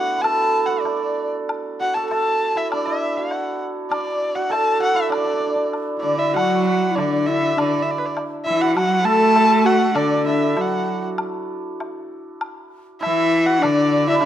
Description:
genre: chinese traditional, Chinese chamber ensemble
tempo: 99 BPM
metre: 2/4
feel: rubato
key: D gong mode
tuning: A4 = 441 Hz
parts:
  - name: dark erhu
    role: melody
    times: 0.0-14.3 s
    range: B4 to A5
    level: -21 LUFS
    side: left 1 dB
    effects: none
  - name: hammered dulcimer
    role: second line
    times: 0.0-14.3 s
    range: A3 to B4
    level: -23 LUFS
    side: right 3 dB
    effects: none
  - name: woodblock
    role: percussion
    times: 0.2-14.3 s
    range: none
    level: -30 LUFS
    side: left 2 dB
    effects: none
  - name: breathy hollow low xiao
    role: second line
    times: 6.0-14.3 s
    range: D4 to A4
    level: -22 LUFS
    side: left 6 dB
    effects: none
  - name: clear cello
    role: second line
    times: 6.0-14.3 s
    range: D3 to A3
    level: -23 LUFS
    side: right 5 dB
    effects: none
room: light reverb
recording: close, detailed microphones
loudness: -17 LUFS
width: side -11 dB against mid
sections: 0.0-6.4 A section; 6.4-14.3 B section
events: none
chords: none

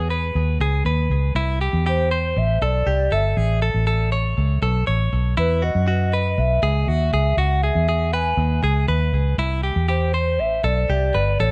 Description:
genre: jangly indie pop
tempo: 120 BPM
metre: 4/4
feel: straight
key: unclear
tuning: A4 = 441 Hz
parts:
  - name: direct-recorded clean electric guitar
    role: arpeggios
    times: 0.0-11.5 s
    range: E4 to C#5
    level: -27 LUFS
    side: equal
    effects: tape echo
  - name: vintage muted fingered electric bass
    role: bass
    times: 0.0-11.5 s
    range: G1 to F#2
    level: -22 LUFS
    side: equal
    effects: none
  - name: hollow clarinet-like synth lead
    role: melody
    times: 1.9-11.5 s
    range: B4 to G#5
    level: -27 LUFS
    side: equal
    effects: chorus, tape echo
room: light reverb, digital ambience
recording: echo-heavy mix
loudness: -20 LUFS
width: mono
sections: 0.0-11.5 A section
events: none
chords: 0.0 C#m7; 1.4 C; 3.4 A; 5.4 Eadd9; 7.1 C#m7; 9.4 C

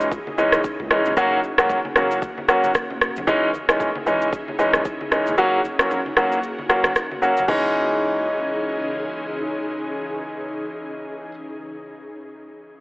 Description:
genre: afrobeats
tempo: 114 BPM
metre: 4/4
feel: swing 58% on 16ths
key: C# dorian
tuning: A4 = 441 Hz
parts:
  - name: clear concert grand piano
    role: accompaniment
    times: 0.0-11.3 s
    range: E3 to F#4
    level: -20 LUFS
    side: equal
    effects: none
  - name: ethereal airy pad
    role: sustained chords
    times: 0.0-11.3 s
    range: C#3 to G#4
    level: -29 LUFS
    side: equal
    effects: ensemble chorus, built-in reverb
  - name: saturated sub bass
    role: bass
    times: 0.0-3.3 s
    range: E1 to C#2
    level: -37 LUFS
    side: equal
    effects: none
  - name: afro-pop drum kit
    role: drums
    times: 0.0-7.6 s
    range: crash cymbal, kick drum, rim click, shaker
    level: -21 LUFS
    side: equal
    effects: overdrive
  - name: impact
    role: sound effects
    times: 0.5-1.2 s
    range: none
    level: barely audible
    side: none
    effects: none
  - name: congas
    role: percussion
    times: 0.3-7.7 s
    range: none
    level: -36 LUFS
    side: equal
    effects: none
room: moderate plate reverb, RT60 2.4 s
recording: telephone sound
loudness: -18 LUFS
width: side -25 dB against mid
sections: 0.0-7.5 A section; 7.5-11.7 B section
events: impact 0.0-1.2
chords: 0.0 C#madd9; 1.2 F#; 3.3 C#madd9; 5.4 F#; 7.5 C#madd9

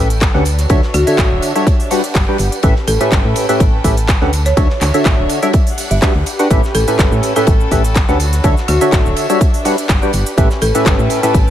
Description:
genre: piano house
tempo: 124 BPM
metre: 4/4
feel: swing 54% on 16ths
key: A mixolydian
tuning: A4 = 439 Hz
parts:
  - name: percussive organ stab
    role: riff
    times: 0.0-11.4 s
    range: A2 to G5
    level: -17 LUFS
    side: equal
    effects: analog chorus, sidechain pumping, ping-pong delay
  - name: solid FM bass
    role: bass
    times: 0.0-11.5 s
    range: D1 to A2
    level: -16 LUFS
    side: equal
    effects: sidechain pumping
  - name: clear studio string section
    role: texture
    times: 0.0-11.5 s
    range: C#4 to G5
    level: -23 LUFS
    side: equal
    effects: sidechain pumping
  - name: house drum kit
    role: drums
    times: 0.1-11.5 s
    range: handclaps, hi-hat, shaker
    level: -22 LUFS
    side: equal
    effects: none
  - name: tambourine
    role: percussion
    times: 0.1-11.5 s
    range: none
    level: -31 LUFS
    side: right 7 dB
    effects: none
  - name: damped 70s drum kit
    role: drums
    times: 0.2-11.5 s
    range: hi-hat, ride cymbal, snare drum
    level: -30 LUFS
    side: left 2 dB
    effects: sidechain pumping on cymbals, high-pass filter on cymbals, sidechain pumping on hats, high-pass filter on hats, high-pass filter on snare, high-pass filter on room
  - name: electronic kick drum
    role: drums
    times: 0.2-11.4 s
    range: none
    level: -13 LUFS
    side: equal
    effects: none
  - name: folk marimba with hard mallets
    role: melody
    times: 0.9-10.8 s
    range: F#4 to E5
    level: -22 LUFS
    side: equal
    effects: ping-pong delay
room: light reverb, studio ambience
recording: none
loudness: -11 LUFS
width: side -11 dB against mid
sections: 0.0-11.5 A section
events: none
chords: 0.5 Dmaj9; 1.7 Gmaj7; 2.6 A9; 4.3 Dmaj9; 5.5 Gmaj7; 6.5 A9; 8.2 Dmaj9; 9.4 Gmaj7; 10.4 A9

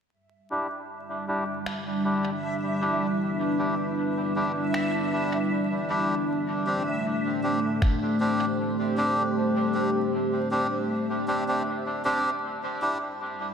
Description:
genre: ambient dub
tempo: 78 BPM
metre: 4/4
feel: straight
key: E minor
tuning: A4 = 440 Hz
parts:
  - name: deep dark ambient pad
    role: sustained chords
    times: 1.1-13.5 s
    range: G3 to D5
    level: -27 LUFS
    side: equal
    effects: chorus, built-in reverb
  - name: backwards swelling texture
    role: texture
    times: 1.1-10.9 s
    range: E5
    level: -37 LUFS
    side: right 1 dB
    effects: built-in reverb, ensemble chorus
  - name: melodica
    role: stabs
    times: 0.5-13.0 s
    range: C4 to G4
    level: -28 LUFS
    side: equal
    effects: low-pass filter, dub echo
  - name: electronic finger snaps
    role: drums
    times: 1.7-8.0 s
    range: none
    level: -40 LUFS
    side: equal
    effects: small room ambience, dub echo
  - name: electronic kick drum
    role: drums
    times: 7.8-8.0 s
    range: none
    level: -22 LUFS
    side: equal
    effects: small room ambience
room: wet plate reverb, RT60 3.1 s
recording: dreamy mix soaked in reverb, vinyl crackle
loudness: -24 LUFS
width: side -7 dB against mid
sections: 0.1-12.4 A section; 12.4-13.5 B section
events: filter sweep on melodica 0.1-12.4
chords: 0.1 Em7; 6.3 D7sus4; 12.4 Em7

